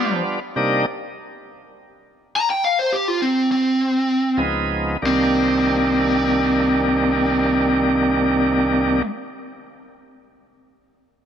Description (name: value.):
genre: blues.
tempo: free time.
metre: none.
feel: none.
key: C minor.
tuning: A4 = 440 Hz.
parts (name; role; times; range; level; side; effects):
lead guitar through a small cranked amp; melody; 0.0-9.1 s; B3 to Bb5; -19 LUFS; equal; overdrive.
bright tonewheel organ; accompaniment; 0.0-0.9, 4.4-9.0 s; C2 to F4; -20 LUFS; equal; slow rotary speaker, overdrive.
room: light reverb, digital ambience.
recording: none.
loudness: -17 LUFS.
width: side -9 dB against mid.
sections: 0.0-5.0 A section; 5.0-10.3 B section.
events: slowing down 0.4-5.0.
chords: 0.4 Cm9; 4.4 Db7; 5.0 Cm9.